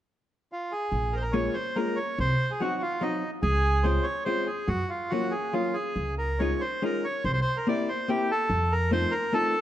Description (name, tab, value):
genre	musette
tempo	143 BPM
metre	3/4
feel	rubato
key	Bb minor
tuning	A4 = 438 Hz
part	bandoneon	melody	0.5-9.6 s	Eb4 to D5	-28 LUFS	right 1 dB	none
part	upright bass	bass	0.9-9.0 s	Bb1 to Gb2	-27 LUFS	equal	none
part	hollow-body jazz guitar	accompaniment	1.3-9.5 s	Gb3 to G4	-29 LUFS	left 2 dB	none
room	moderate scoring stage reverb, RT60 1.5 s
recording	none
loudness	-25 LUFS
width	side -12 dB against mid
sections	0.9-9.6 A section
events	none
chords	0.0 N.C.; 0.9 Bbm7; 2.2 Cdim; 3.4 Dbmaj7; 4.7 Gbmaj7; 6.0 Dbadd9; 7.2 C7; 8.5 F7